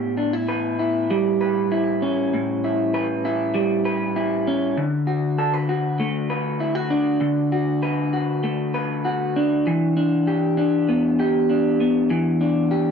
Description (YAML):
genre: indie pop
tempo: 98 BPM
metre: 4/4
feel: straight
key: D major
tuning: A4 = 440 Hz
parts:
  - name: electric guitar through a small old amp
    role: solo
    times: 0.0-12.9 s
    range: A2 to B4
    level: -19 LUFS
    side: equal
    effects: wide subtle chorus, warbly pitch drift
room: moderate spring reverb, RT60 1.6 s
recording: worn, warbling old tape, cassette tape, warbly pitch drift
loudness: -19 LUFS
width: side -6 dB against mid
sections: 0.0-12.9 A section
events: none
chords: 0.0 A9; 4.8 D6; 9.7 Em7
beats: 0.50 1.11 1.72 | 2.33 2.94 3.55 4.17 | 4.78 5.39 6.00 6.61 | 7.22 7.83 8.45 9.06 | 9.67 10.28 10.89 11.50 | 12.11 12.72